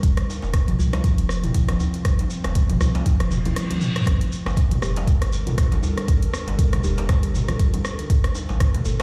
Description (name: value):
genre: afro house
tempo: 119 BPM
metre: 4/4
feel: swing 56% on 16ths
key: G dorian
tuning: A4 = 440 Hz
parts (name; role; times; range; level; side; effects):
- ethereal airy pad; sustained chords; 0.0-9.0 s; F3 to C5; -38 LUFS; equal; ensemble chorus, built-in reverb, sidechain pumping
- kalimba; arpeggios; 0.0-9.0 s; C3 to A4; -31 LUFS; equal; sidechain pumping
- warm sub bass; bass; 0.0-9.0 s; F1 to C2; -27 LUFS; equal; sidechain pumping
- deep house drum kit; drums; 0.0-9.0 s; hi-hat, rim click, toms; -31 LUFS; equal; none
- electronic kick drum; drums; 0.0-8.7 s; none; -22 LUFS; equal; none
- congas; percussion; 0.0-9.0 s; none; -35 LUFS; equal; none
- shekere; percussion; 0.0-9.0 s; none; -42 LUFS; equal; none
- djembe; percussion; 0.3-9.0 s; none; -33 LUFS; equal; none
- reverse cymbal; sound effects; 3.3-4.1 s; none; -38 LUFS; equal; none
room: light reverb, studio reverb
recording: played on a big sound system in a bare room, large studio reverb, faint mains hum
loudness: -21 LUFS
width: mono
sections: 0.0-9.0 A section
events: reverse cymbal 3.3-4.1; drum fill 3.7-4.1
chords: 0.0 Fsus2; 4.1 Gmadd9; 8.1 Am